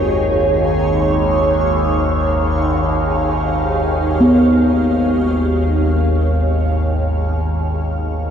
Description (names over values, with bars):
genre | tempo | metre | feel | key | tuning
dark ambient drone | free time | none | none | unclear | A4 = 439 Hz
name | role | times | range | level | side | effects
granular cloud pad | sustained chords | 0.0-8.3 s | D#4 to E#5 | -21 LUFS | right 2 dB | built-in reverb
overtone-sweeping drone | drone | 0.0-8.3 s | G#1 to D#2 | -16 LUFS | equal | chorus, built-in reverb
quartz singing bowl | texture | 0.0-8.3 s | C#5 | -26 LUFS | right 4 dB | none
gamelan-type bossed gongs | arpeggios | 4.2-8.3 s | B3 | -18 LUFS | equal | tape echo
room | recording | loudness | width
wet huge ambient reverb, RT60 9.4 s | none | -14 LUFS | side -8 dB against mid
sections
0.0-8.3 A section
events
fade-out 4.6-8.3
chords
0.0 C#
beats
free time